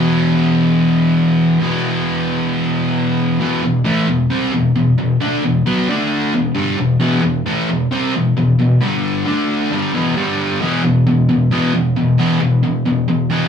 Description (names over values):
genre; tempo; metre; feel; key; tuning
rock; 133 BPM; 4/4; straight; E minor; A4 = 440 Hz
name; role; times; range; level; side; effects
overdriven electric guitar; solo; 0.0-13.5 s; E2 to D4; -14 LUFS; left 1 dB; none
room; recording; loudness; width
moderate studio reverb, RT60 0.6 s; rough rehearsal-room recording, warm saturation, small room ambience; -14 LUFS; side -7 dB against mid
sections
0.0-3.4 A section; 3.4-10.6 B section; 10.6-13.5 C section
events
none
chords
0.0 E5; 5.9 D5; 6.3 Em; 8.8 G5; 9.3 D5; 9.7 Em; 10.2 G5; 10.6 E5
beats
0.25 0.70 1.16 | 1.61 2.06 2.51 2.96 | 3.41 3.86 4.31 4.76 | 5.21 5.66 6.11 6.56 | 7.01 7.46 7.91 8.36 | 8.81 9.26 9.71 10.16 | 10.61 11.06 11.51 11.96 | 12.41 12.87 13.32